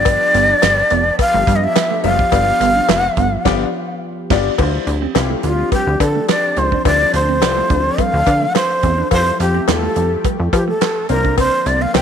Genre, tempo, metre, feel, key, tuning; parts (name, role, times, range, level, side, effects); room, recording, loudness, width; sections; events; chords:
early-eighties boogie funk; 106 BPM; 4/4; straight; D minor; A4 = 440 Hz
breathy shakuhachi; melody; 0.0-12.0 s; F4 to G5; -16 LUFS; equal; slapback echo
clear concert grand piano; accompaniment; 0.0-12.0 s; G3 to E5; -23 LUFS; left 13 dB
chorused pulse-width pad; sustained chords; 0.0-12.0 s; D3 to E5; -27 LUFS; left 2 dB
plucky analog bass; bass; 0.0-12.0 s; F1 to F3; -19 LUFS; equal
damped 70s drum kit; drums; 0.1-12.0 s; crash cymbal, handclaps, hi-hat, kick drum, snare drum; -20 LUFS; right 4 dB
cowbell; percussion; 0.1-12.0 s; -23 LUFS; left 17 dB
semi-hollow electric guitar; riff; 0.2-12.0 s; G3 to F4; -26 LUFS; right 14 dB; wide subtle chorus
light reverb, small room ambience; 1960s-style stereo with parts hard left and right; -13 LUFS; side -8 dB against mid
0.0-4.6 A section; 4.6-12.0 B section
band accent 3.5-4.6; shakuhachi solo 4.6-12.0
0.0 G7; 4.6 Dm11; 9.1 Fmaj9; 11.1 C9sus4